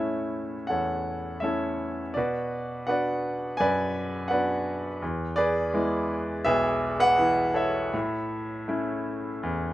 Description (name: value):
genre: classical, lyrical solo piano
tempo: 83 BPM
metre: 4/4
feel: rubato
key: A major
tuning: A4 = 440 Hz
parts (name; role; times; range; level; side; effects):
- bright concert grand piano; solo; 0.0-9.7 s; B1 to G#5; -25 LUFS; equal; none
room: light reverb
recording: minimal, uncompressed stereo recording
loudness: -25 LUFS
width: side -15 dB against mid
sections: 0.0-9.7 A section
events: grand piano fill 9.4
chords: 0.0 A; 2.2 Bm; 5.0 E; 7.9 A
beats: 0.70 1.43 | 2.15 2.88 3.59 4.30 | 5.02 5.74 6.46 7.19 | 7.93 8.68 9.44